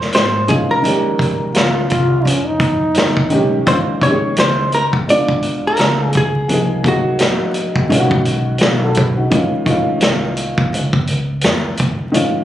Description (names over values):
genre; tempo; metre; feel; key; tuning
hip hop, jazz-hop; 85 BPM; 4/4; swing 58% on 16ths; unclear; A4 = 444 Hz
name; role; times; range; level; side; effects
upright bass; bass; 0.0-12.4 s; Ab1 to F2; -20 LUFS; equal; none
vintage drum kit; drums; 0.0-12.3 s; hi-hat, kick drum, snare drum; -18 LUFS; equal; vintage 12-bit sampler grit
hollow-body jazz guitar; melody; 0.1-7.9 s; Gb4 to D5; -18 LUFS; equal; none
dark upright piano; accompaniment; 0.5-12.4 s; Eb3 to B4; -18 LUFS; left 1 dB; none
clear trombone; second line; 1.5-3.7 s; Db4 to F4; -18 LUFS; equal; none
room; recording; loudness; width
light reverb, small room ambience; recorded on a phone in the room, club reverb, vinyl crackle; -13 LUFS; side -12 dB against mid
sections
0.0-3.7 A section; 3.7-12.4 B section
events
none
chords
0.0 Bbm11; 3.7 Bbm7; 5.1 Bdim7; 6.5 Cm7b5; 7.9 B; 9.3 Bbm9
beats
0.14 | 0.85 1.55 2.26 2.96 | 3.67 4.38 5.08 5.79 | 6.50 7.20 7.91 8.61 | 9.32 10.02 10.73 11.44 | 12.14